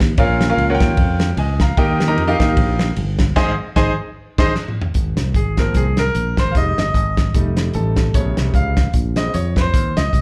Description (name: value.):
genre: uptempo gospel.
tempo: 151 BPM.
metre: 4/4.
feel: swing 57% on 8ths.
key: Ab major.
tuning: A4 = 440 Hz.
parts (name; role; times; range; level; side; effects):
fingered electric bass; bass; 0.0-10.2 s; F1 to F2; -22 LUFS; equal; none.
warm soul drum kit; drums; 0.0-10.2 s; crash cymbal, hi-hat, kick drum, ride cymbal, snare drum, toms; -21 LUFS; equal; none.
clear baby grand piano; accompaniment; 0.2-10.2 s; Ab2 to Bb5; -22 LUFS; equal; plate reverb, slapback echo.
room: light reverb.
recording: live gig heard through the venue's PA, club reverb.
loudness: -17 LUFS.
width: mono.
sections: 0.0-5.0 A section; 5.0-10.2 B section.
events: band accent 3.4-5.0; drum fill 4.6-5.0; grand piano solo 5.0-10.2.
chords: 0.2 Bbm; 1.8 Eb; 3.4 Ab; 5.0 Ab6; 6.5 Fm9; 7.3 F7; 8.1 Bbm7.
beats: | 0.18 0.58 0.98 1.37 | 1.77 2.17 2.57 2.96 | 3.36 3.76 4.16 4.56 | 4.96 5.35 5.75 6.15 | 6.55 6.95 7.35 7.75 | 8.14 8.54 8.94 9.34 | 9.74 10.14.